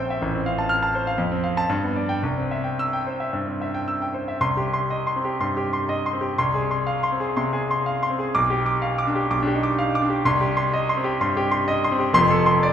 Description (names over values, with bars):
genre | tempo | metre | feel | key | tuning
classical, virtuoso piano study | 107-128 BPM | 4/4 | rubato | C major, C minor from 4.4 s | A4 = 440 Hz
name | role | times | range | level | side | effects
bright concert grand piano | solo | 0.0-12.7 s | F1 to F6 | -20 LUFS | equal | none
room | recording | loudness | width
wet concert hall reverb, RT60 2.3 s | heard from further back in the room | -20 LUFS | side -9 dB against mid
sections
0.0-4.4 A section; 4.4-12.7 B section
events
none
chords
0.2 F/A; 1.2 F; 1.7 G; 2.2 C; 4.4 Cm; 6.4 Fm/C; 8.3 G7/B; 10.2 Cm; 12.1 Dm7/F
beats
| 0.22 0.69 1.17 1.68 | 2.21 2.77 3.32 3.86 | 4.39 4.89 5.38 5.88 | 6.36 6.85 7.35 7.84 | 8.33 8.81 9.30 9.77 | 10.25 10.72 11.20 11.67 | 12.15 12.63